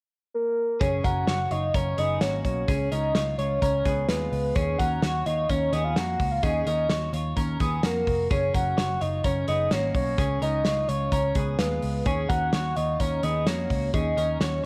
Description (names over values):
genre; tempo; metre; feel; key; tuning
jangly indie pop; 128 BPM; 4/4; straight; unclear; A4 = 440 Hz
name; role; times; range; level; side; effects
soft octave-layered synth lead; melody; 0.3-14.7 s; Bb4 to Gb5; -29 LUFS; equal; chorus
twelve-string electric guitar; arpeggios; 0.8-14.6 s; Ab3 to Db5; -34 LUFS; equal; none
vintage muted picked electric bass; bass; 0.8-14.6 s; F1 to F2; -31 LUFS; equal; none
loose indie drum kit; drums; 0.8-14.5 s; hi-hat, kick drum, snare drum; -31 LUFS; equal; none
room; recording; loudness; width
light reverb, studio reverb; none; -25 LUFS; mono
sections
0.8-14.7 A section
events
none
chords
0.0 N.C.; 0.8 Gbadd9; 2.7 Db; 4.6 Ebm7; 8.3 Gbadd9; 10.2 Db; 12.1 Ebm7